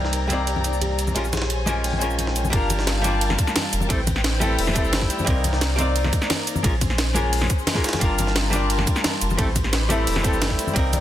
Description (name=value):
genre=liquid drum and bass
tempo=175 BPM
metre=4/4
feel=straight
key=G minor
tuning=A4 = 440 Hz
part: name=archtop guitar, miked and amplified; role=accompaniment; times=0.0-11.0 s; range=G3 to D5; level=-25 LUFS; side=left 1 dB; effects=dub echo
part: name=dark symphonic string section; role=sustained chords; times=0.0-11.0 s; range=Db4 to Bb5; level=-30 LUFS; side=left 2 dB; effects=sidechain pumping
part: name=warm sub bass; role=bass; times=0.0-11.0 s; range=E1 to C2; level=-24 LUFS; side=equal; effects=none
part: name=jungle sampler-style drum kit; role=drums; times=0.0-11.0 s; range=hi-hat, ride cymbal, snare drum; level=-30 LUFS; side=right 2 dB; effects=high-pass filter on cymbals, low-pass filter on cymbals, high-pass filter on hats, low-pass filter on hats, high-pass filter on snare, low-pass filter on snare
part: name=harp-like synth pluck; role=arpeggios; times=0.1-2.3 s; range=G4 to G5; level=-34 LUFS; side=left 2 dB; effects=chorus, tape echo
part: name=drum and bass drum kit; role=drums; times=0.1-11.0 s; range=hi-hat, shaker, snare drum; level=-26 LUFS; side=right 1 dB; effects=overdrive
part: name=congas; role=percussion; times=0.3-11.0 s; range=none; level=-31 LUFS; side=left 3 dB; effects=none
part: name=electronic kick drum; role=drums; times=2.5-10.8 s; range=none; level=-23 LUFS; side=equal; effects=overdrive
room=light reverb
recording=dense, heavily limited modern master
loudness=-19 LUFS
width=side -12 dB against mid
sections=0.0-2.5 A section; 2.5-11.0 B section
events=drop 2.5-11.0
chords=0.0 Cm7; 1.2 Bbm7; 2.5 Gm7; 3.9 Am7; 5.3 Cm7; 6.6 Bbm7; 8.0 Gm7; 9.4 Am7